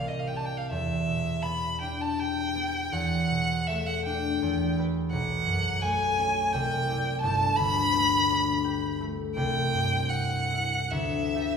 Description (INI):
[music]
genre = classical, impressionist duo for violin and harp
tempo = 83 BPM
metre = 3/4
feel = uneven beats, rubato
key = unclear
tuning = A4 = 440 Hz
[part]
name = clear violin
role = melody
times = 0.0-11.6 s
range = Eb5 to B5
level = -27 LUFS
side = equal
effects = none
[part]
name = concert harp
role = accompaniment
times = 0.0-11.6 s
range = G1 to D5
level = -28 LUFS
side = left 1 dB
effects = none
[sound]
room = wet recital hall reverb, RT60 1.6 s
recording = heard from further back in the room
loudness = -25 LUFS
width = side -6 dB against mid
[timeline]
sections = 0.0-11.6 A section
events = none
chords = 0.0 Csus2; 0.7 Em7; 2.9 Bm7/E; 4.4 Emadd9; 5.1 Bsus2; 6.5 C69; 7.2 Gadd9; 9.4 C; 10.9 D9sus4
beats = | 0.70 1.45 2.19 | 2.92 3.67 4.42 | 5.12 5.82 6.53 | 7.23 7.94 8.65 | 9.36 10.10 10.92